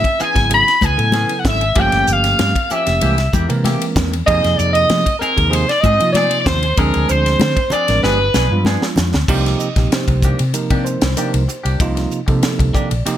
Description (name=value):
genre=electric jazz fusion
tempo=96 BPM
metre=4/4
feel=straight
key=unclear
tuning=A4 = 440 Hz
part: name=warm soprano saxophone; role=melody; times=0.0-8.6 s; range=Bb4 to B5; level=-17 LUFS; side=equal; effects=plate reverb
part: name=crunchy overdriven guitar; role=second line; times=0.0-8.6 s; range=Bb4 to B5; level=-21 LUFS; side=left 2 dB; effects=none
part: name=bell-like tine electric piano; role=accompaniment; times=0.0-13.2 s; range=C3 to Eb5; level=-22 LUFS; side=right 4 dB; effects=none
part: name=clean electric guitar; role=stabs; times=0.0-13.1 s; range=Eb3 to G#4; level=-26 LUFS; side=left 1 dB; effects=lush chorus, plate reverb
part: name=crisp fusion drum kit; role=drums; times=0.0-13.2 s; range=crash cymbal, hi-hat, kick drum, ride cymbal, snare drum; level=-20 LUFS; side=equal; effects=none
part: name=mellow fretless electric bass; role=bass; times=0.2-13.1 s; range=F1 to F3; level=-18 LUFS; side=equal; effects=wide subtle chorus
part: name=congas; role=percussion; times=0.5-9.1 s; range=none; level=-22 LUFS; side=left 4 dB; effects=none
room=light reverb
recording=none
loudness=-13 LUFS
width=side -11 dB against mid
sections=0.0-9.3 A section; 9.3-13.2 B section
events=drum fill 8.0-9.3; tine electric piano fill 12.4-13.2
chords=0.0 Amaj9; 1.8 Gm7b5; 3.0 C7b13; 4.3 Fm7; 6.8 Dm7b5; 8.0 G7b9; 9.3 Cm9